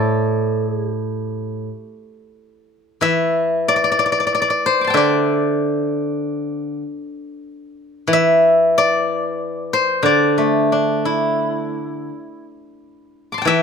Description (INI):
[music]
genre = chinese traditional, Chinese solo plucked strings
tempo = 85-98 BPM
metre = 4/4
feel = rubato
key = unclear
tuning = A4 = 440 Hz
[part]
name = steel-string zither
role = solo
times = 0.0-13.6 s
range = A2 to D6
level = -16 LUFS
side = left 1 dB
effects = none
[sound]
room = light reverb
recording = minimal, uncompressed stereo recording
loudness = -16 LUFS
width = side -6 dB against mid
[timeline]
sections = 0.0-2.4 A section; 2.4-13.6 B section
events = none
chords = none